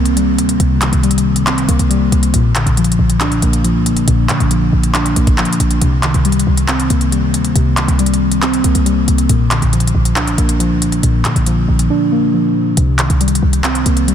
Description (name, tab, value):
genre	hip hop, trap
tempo	138 BPM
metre	4/4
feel	half-time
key	C minor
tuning	A4 = 438 Hz
part	muted felt-like synth keys	accompaniment	0.0-14.1 s	Bb2 to D4	-14 LUFS	left 1 dB	chorus, low-pass filter
part	short 808-style bass	bass	0.0-14.1 s	Bb1 to Bb2	-16 LUFS	equal	none
part	trap drum kit	drums	0.1-14.1 s	handclaps, hi-hat, kick drum	-19 LUFS	equal	none
room	digital ambience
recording	dense, heavily limited modern master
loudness	-11 LUFS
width	side -9 dB against mid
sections	0.0-12.8 A section; 12.8-14.1 B section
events	drums muted 11.9-12.8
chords	0.0 Cm7; 2.3 Bb; 5.8 Cm7; 9.3 Bb; 12.8 Cm7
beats	0.16 | 0.60 1.03 1.47 1.90 | 2.34 2.77 3.21 3.64 | 4.08 4.51 4.95 5.38 | 5.82 6.25 6.68 7.12 | 7.55 7.99 8.42 8.86 | 9.29 9.73 10.16 10.60 | 11.03 11.47 11.90 12.34 | 12.77 13.21 13.64 14.08